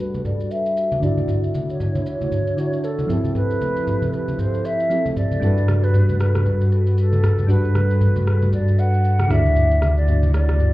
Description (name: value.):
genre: amapiano.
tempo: 116 BPM.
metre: 4/4.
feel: swing 58% on 16ths.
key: G major.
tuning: A4 = 440 Hz.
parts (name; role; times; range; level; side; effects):
mellow hollow silver concert flute; melody; 0.0-10.7 s; A4 to F#5; -25 LUFS; left 1 dB; low-pass filter, digital delay.
soft electric-piano-like synth keys; accompaniment; 0.0-10.7 s; D3 to E5; -26 LUFS; right 1 dB; chorus, low-pass filter.
airy breathy pad; sustained chords; 0.0-10.7 s; D3 to B4; -29 LUFS; equal; chorus, low-pass filter.
electronic shaker and rim click; drums; 0.1-10.7 s; none; -34 LUFS; equal; none.
congas; percussion; 0.1-10.7 s; none; -24 LUFS; equal; none.
punchy sub bass; bass; 5.4-10.7 s; D2 to G2; -17 LUFS; equal; none.
room: digital ambience.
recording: heard muffled through a wall, club reverb, EQ.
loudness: -17 LUFS.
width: side -17 dB against mid.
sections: 0.0-10.7 A section.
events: filter sweep 0.0-10.7.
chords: 0.0 Gmaj9; 1.0 Dmaj9; 3.1 Fmaj9; 5.4 Gmaj9; 9.3 Dadd9.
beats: 0.25 0.77 | 1.29 1.80 2.32 2.84 | 3.36 3.87 4.39 4.91 | 5.42 5.94 6.46 6.98 | 7.49 8.01 8.53 9.05 | 9.56 10.08 10.60.